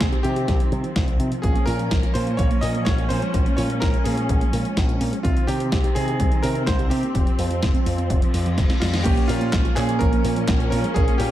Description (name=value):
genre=italo disco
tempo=126 BPM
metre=4/4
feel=straight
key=Bb dorian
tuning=A4 = 440 Hz
part: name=bright electric grand piano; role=melody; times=0.0-11.3 s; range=F4 to Eb5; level=-29 LUFS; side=right 1 dB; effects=ping-pong delay
part: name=dark studio string section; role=sustained chords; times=0.0-11.3 s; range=Eb3 to Db4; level=-27 LUFS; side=right 1 dB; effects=none
part: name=warbly dusty pluck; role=arpeggios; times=0.0-11.3 s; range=C3 to C5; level=-31 LUFS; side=right 2 dB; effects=chorus, tape echo
part: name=picked electric bass with an envelope filter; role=bass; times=0.0-11.3 s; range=F1 to C3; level=-25 LUFS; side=equal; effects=none
part: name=clean 12-bit digital drum machine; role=drums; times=0.0-11.3 s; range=crash cymbal, handclaps, hi-hat, snare drum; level=-29 LUFS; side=equal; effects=none
part: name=electronic kick drum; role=drums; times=0.0-11.1 s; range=none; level=-22 LUFS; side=equal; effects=none
part: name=reverse cymbal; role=sound effects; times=8.3-9.1 s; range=none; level=-34 LUFS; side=left 2 dB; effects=none
part: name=chorused polysynth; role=stabs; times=9.1-11.3 s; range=Bb3 to Db5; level=-27 LUFS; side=right 5 dB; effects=none
room=light reverb, digital ambience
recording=none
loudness=-18 LUFS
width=side -13 dB against mid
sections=0.0-9.1 A section; 9.1-11.3 B section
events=reverse cymbal 8.3-9.1; drum fill 8.6-9.1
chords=0.0 Cm; 1.4 Bbm; 5.2 Cm; 7.1 Fsus2; 9.1 Bbm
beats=0.01 0.48 0.96 | 1.44 1.91 2.39 2.86 | 3.34 3.82 4.29 4.77 | 5.24 5.72 6.20 6.67 | 7.15 7.62 8.10 8.58 | 9.05 9.53 10.01 10.48 | 10.96